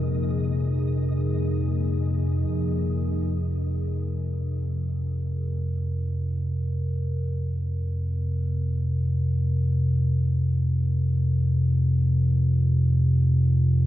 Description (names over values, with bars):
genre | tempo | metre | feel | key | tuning
dark ambient drone | free time | none | none | unclear | A4 = 440 Hz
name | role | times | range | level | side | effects
deep dark ambient pad | sustained chords | 0.0-2.5 s | F3 to Ab4 | -32 LUFS | left 1 dB | chorus, built-in reverb
bronze singing bowl | arpeggios | 0.0-1.7 s | Bb4 | -45 LUFS | left 4 dB | tape echo
deep rumbling drone | drone | 0.0-13.9 s | F2 to C3 | -22 LUFS | equal | built-in reverb, wide subtle chorus
flickering grainy texture | texture | 0.0-2.5 s | Eb5 | -51 LUFS | equal | built-in reverb
room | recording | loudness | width
moderate huge ambient reverb, RT60 8.4 s | dark, warm production | -22 LUFS | side -14 dB against mid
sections
0.0-2.5 A section; 2.5-13.9 B section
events
none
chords
0.0 Ab69/F; 2.5 F5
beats
free time